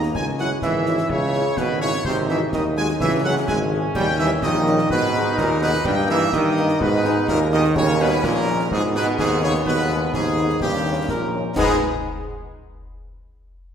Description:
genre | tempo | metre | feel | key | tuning
military-style march for wind band | 126 BPM | 2/4 | straight | G# minor | A4 = 441 Hz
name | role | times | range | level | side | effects
warm trumpet section | melody | 0.0-11.8 s | G4 to G#5 | -25 LUFS | equal | none
clear euphonium | second line | 0.0-11.8 s | G2 to A#3 | -23 LUFS | right 2 dB | none
warm trombone section | sustained chords | 0.0-11.8 s | D#3 to D#4 | -29 LUFS | right 1 dB | none
warm tuba | bass | 0.0-11.8 s | G#1 to G#2 | -23 LUFS | right 1 dB | none
concert snare drum, clash cymbals and concert bass drum | drums | 0.0-11.8 s | none | -31 LUFS | left 2 dB | none
mellow French horn section | accompaniment | 0.4-11.8 s | G3 to G#4 | -28 LUFS | left 3 dB | none
room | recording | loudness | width
wet scoring stage reverb, RT60 1.7 s | recorded in a church or concert hall | -18 LUFS | side -8 dB against mid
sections
0.0-11.6 A section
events
none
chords
0.2 C#m; 2.1 G#5; 3.0 C#5; 4.0 D#7; 4.9 G#m; 5.9 D#/G; 6.8 G#m; 7.8 D#7; 8.7 G#m/D#; 10.6 D#7; 11.6 G#m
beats
| 0.15 0.63 | 1.10 1.58 | 2.05 2.53 | 3.00 3.48 | 3.96 4.43 | 4.91 5.38 | 5.86 6.33 | 6.81 7.29 | 7.76 8.24 | 8.71 9.19 | 9.66 10.14 | 10.62 11.09 | 11.57

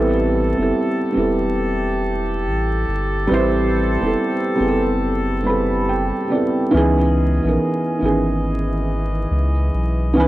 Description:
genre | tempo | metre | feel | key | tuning
lo-fi hip hop | 70 BPM | 4/4 | swing 65% on 16ths | unclear | A4 = 439 Hz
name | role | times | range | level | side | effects
felt-muted upright piano | accompaniment | 0.0-10.3 s | E3 to B5 | -18 LUFS | right 1 dB | cassette tape, low-pass filter
warm brass ensemble | sustained chords | 0.0-10.3 s | E3 to D#5 | -26 LUFS | equal | low-pass filter
soft dub sub bass | bass | 0.0-10.3 s | E1 to C#2 | -21 LUFS | equal | none
room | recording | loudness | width
light reverb | dark, warm production, vinyl crackle | -17 LUFS | side -16 dB against mid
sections
0.0-10.3 A section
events
felt piano fill 5.0-6.7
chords
0.0 Am9; 6.7 C#m9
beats
0.73 1.59 2.44 | 3.30 4.16 5.02 5.87 | 6.73 7.59 8.45 9.30 | 10.16

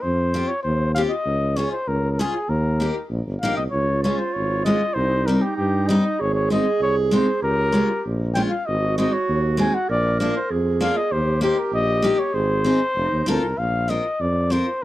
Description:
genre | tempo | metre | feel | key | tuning
alpine folk, alpine dance band | 98 BPM | 2/4 | straight | Ab major | A4 = 440 Hz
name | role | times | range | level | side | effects
mellow trumpet | melody | 0.0-14.8 s | G4 to Ab5 | -24 LUFS | left 1 dB | none
mellow tuba | bass | 0.0-14.8 s | F1 to G2 | -23 LUFS | equal | none
picked steel-string acoustic guitar | accompaniment | 0.3-14.7 s | G3 to Bb4 | -22 LUFS | left 1 dB | none
warm clarinet | second line | 3.7-13.5 s | Eb4 to Bb4 | -25 LUFS | right 4 dB | none
room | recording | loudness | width
studio ambience | dry, close 1970s-style studio recording | -19 LUFS | side -15 dB against mid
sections
0.0-13.6 A section; 13.6-14.8 B section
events
none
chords
0.0 Fsus2; 1.3 Db; 2.5 Eb; 3.7 Db; 5.0 Cm; 6.2 Ab; 7.4 Db; 8.7 Ab7; 9.9 Bb7; 11.1 Eb; 12.3 Ab; 13.0 F7; 13.6 Bbsus2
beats
| 0.04 0.65 | 1.26 1.88 | 2.50 3.11 | 3.73 4.35 | 4.96 5.58 | 6.19 6.81 | 7.42 8.04 | 8.66 9.28 | 9.89 10.51 | 11.12 11.73 | 12.34 12.96 | 13.58 14.21 | 14.82

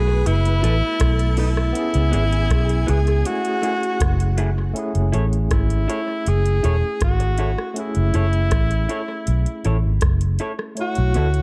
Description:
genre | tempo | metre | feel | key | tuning
lovers rock reggae | 80 BPM | 4/4 | straight | F# minor | A4 = 437 Hz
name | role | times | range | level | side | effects
warm tenor saxophone | melody | 0.0-11.4 s | E4 to G#4 | -27 LUFS | equal | tape echo
phased string machine | second line | 0.0-4.7 s | F#4 to B5 | -35 LUFS | equal | ensemble chorus, phaser, tape echo
barky tine electric piano | accompaniment | 0.0-11.4 s | G#3 to C#5 | -32 LUFS | equal | overdrive, fast tremolo
vintage muted fingered electric bass | bass | 0.0-11.4 s | E1 to D2 | -21 LUFS | equal | none
electric guitar through a small old amp | stabs | 0.1-11.3 s | A3 to C#5 | -31 LUFS | equal | none
soft vintage rhythm box | drums | 0.3-11.4 s | hi-hat, kick drum, rim click | -26 LUFS | equal | tape echo
room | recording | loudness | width
digital ambience | dark, warm production | -20 LUFS | mono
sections
0.0-4.8 A section; 4.8-11.4 B section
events
none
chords
0.0 F#m11; 1.8 C#m7; 3.3 F#m9; 4.8 F#m7; 10.8 B7sus4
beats
0.25 1.00 | 1.75 2.50 3.25 4.00 | 4.75 5.51 6.26 7.01 | 7.76 8.52 9.27 10.02 | 10.78

